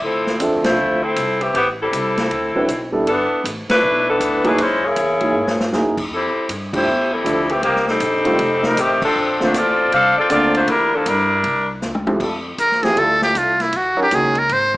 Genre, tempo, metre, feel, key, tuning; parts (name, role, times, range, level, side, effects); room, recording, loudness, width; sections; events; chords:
jazz, big band swing; 158 BPM; 4/4; swing 64% on 8ths; D minor; A4 = 441 Hz
bright saxophone section; melody; 0.0-11.7 s; Eb3 to F5; -16 LUFS; left 1 dB
upright bass; bass; 0.0-14.8 s; F1 to G#2; -30 LUFS; equal
swinging big-band drum kit; drums; 0.0-14.8 s; crash cymbal, hi-hat, kick drum, ride cymbal, snare drum, toms; -26 LUFS; equal
warm grand piano; accompaniment; 0.4-14.3 s; D3 to E5; -21 LUFS; right 1 dB
clear trombone section; sustained chords; 12.2-14.1 s; Gb3 to Bb4; -24 LUFS; equal
trumpet with metal mute; melody; 12.6-14.8 s; E4 to C5; -15 LUFS; equal
moderate large studio reverb, RT60 0.9 s; small speaker sound; -15 LUFS; side -18 dB against mid
0.0-12.2 A section; 12.2-14.8 B section
band accent 0.6, 3.6, 6.7, 9.0; drum fill 5.3-5.7, 11.8-12.2; muted trumpet solo 12.2-14.8
0.0 Dm9; 1.5 Am7; 2.3 D13; 3.1 G69; 4.6 F#13; 6.1 Fmaj13; 7.6 Cm7; 8.4 F9; 9.2 Bbmaj9; 10.7 Em7b5; 11.4 Cadd9; 13.7 Ebm7